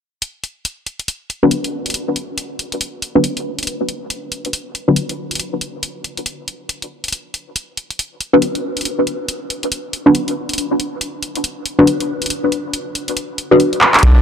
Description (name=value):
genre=deep dubstep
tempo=139 BPM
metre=4/4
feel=swing 60% on 16ths, half-time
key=B minor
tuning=A4 = 441 Hz
part: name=dubstep drum kit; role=drums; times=0.2-14.1 s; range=handclaps, hi-hat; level=-18 LUFS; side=equal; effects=none
part: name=filtered dub chord stab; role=stabs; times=1.4-5.0, 8.3-13.6 s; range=D4 to B4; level=-16 LUFS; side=left 1 dB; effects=phaser, dub echo
part: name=clear cello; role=melody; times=14.0-14.2 s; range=D4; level=-22 LUFS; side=right 1 dB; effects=none
part: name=deep soft wobble bass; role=bass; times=14.0-14.2 s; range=B1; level=-8 LUFS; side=equal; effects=chorus
part: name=riser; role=sound effects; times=14.1-14.2 s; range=none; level=-35 LUFS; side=left 3 dB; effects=none
room=moderate huge ambient reverb, RT60 5.2 s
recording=dark, warm production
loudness=-16 LUFS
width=side -8 dB against mid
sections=0.2-14.0 A section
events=filter sweep on synth stab 0.2-14.0; drum fill 13.8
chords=0.2 Bm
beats=| 0.22 0.65 1.08 1.51 | 1.95 2.38 2.81 3.24 | 3.67 4.10 4.54 4.97 | 5.40 5.83 6.26 6.69 | 7.12 7.56 7.99 8.42 | 8.85 9.28 9.71 10.15 | 10.58 11.01 11.44 11.87 | 12.30 12.74 13.17 13.60 | 14.03